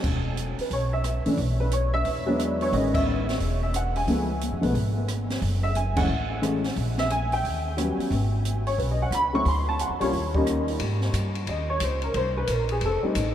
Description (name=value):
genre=jazz piano trio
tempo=178 BPM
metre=4/4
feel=swing 64% on 8ths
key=E major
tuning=A4 = 436 Hz
part: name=upright bass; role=bass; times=0.0-13.3 s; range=E1 to Ab2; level=-27 LUFS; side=equal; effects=none
part: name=open jazz drum kit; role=drums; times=0.0-13.2 s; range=crash cymbal, hi-hat, kick drum, ride cymbal, rim click, snare drum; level=-33 LUFS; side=equal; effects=none
part: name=dark upright piano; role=melody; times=0.6-13.3 s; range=D#3 to C#6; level=-25 LUFS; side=equal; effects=analog chorus, analog delay
room=moderate huge ambient reverb, RT60 8.8 s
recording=dreamy mix soaked in reverb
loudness=-23 LUFS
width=side -10 dB against mid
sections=0.0-10.8 A section; 10.8-13.3 B section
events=band accent 2.9, 5.9; upright piano solo 10.8-13.3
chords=0.0 E5; 1.4 Bsus2; 2.1 E7; 2.7 Amaj9#11; 4.1 C#7b13; 5.4 F#m7; 6.8 N.C.; 7.4 D#7alt; 8.1 G#m; 9.5 Dsus2; 10.1 D#7; 10.8 Ab5; 12.1 Abadd9 (rootless); 12.8 F7